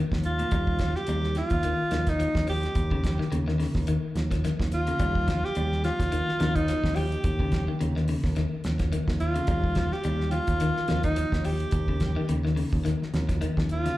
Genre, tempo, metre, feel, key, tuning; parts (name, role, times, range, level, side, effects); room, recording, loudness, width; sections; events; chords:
afrobeat; 107 BPM; 4/4; swing 56% on 16ths; Eb mixolydian; A4 = 441 Hz
clean electric guitar; arpeggios; 0.0-14.0 s; Bb2 to G3; -32 LUFS; left 4 dB; spring reverb, slapback echo
fingered electric bass; bass; 0.1-13.9 s; Eb2; -27 LUFS; equal
damped 70s drum kit; drums; 0.1-14.0 s; hi-hat, kick drum, snare drum; -30 LUFS; equal
bright alto saxophone; melody; 0.3-14.0 s; Eb4 to G4; -29 LUFS; right 1 dB
small room reverb; live gig heard through the venue's PA, club reverb; -24 LUFS; side -16 dB against mid
0.0-14.0 A section
0.0 Eb9